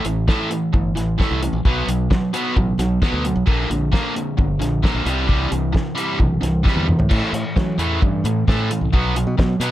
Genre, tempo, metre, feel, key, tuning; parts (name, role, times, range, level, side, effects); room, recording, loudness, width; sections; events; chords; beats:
indie rock; 132 BPM; 4/4; straight; A dorian; A4 = 439 Hz
biting overdriven guitar; riff; 0.0-9.7 s; A2 to B3; -20 LUFS; right 1 dB
modern bright fingered electric bass; bass; 0.0-9.7 s; G1 to F#3; -22 LUFS; equal
cloth-damped thuddy drum kit; drums; 0.0-9.7 s; crash cymbal, hi-hat, kick drum, snare drum, toms; -19 LUFS; equal
little or no reverb; -17 LUFS; side -14 dB against mid
0.0-7.1 A section; 7.1-9.7 B section
drum fill 6.7-7.1
0.0 Am7; 1.6 B5; 3.5 Bb6; 5.1 C; 7.1 A5; 8.9 B5
0.27 0.73 1.19 | 1.64 2.10 2.56 3.01 | 3.47 3.92 4.38 4.83 | 5.29 5.74 6.20 6.65 | 7.11 7.56 8.02 8.47 | 8.93 9.38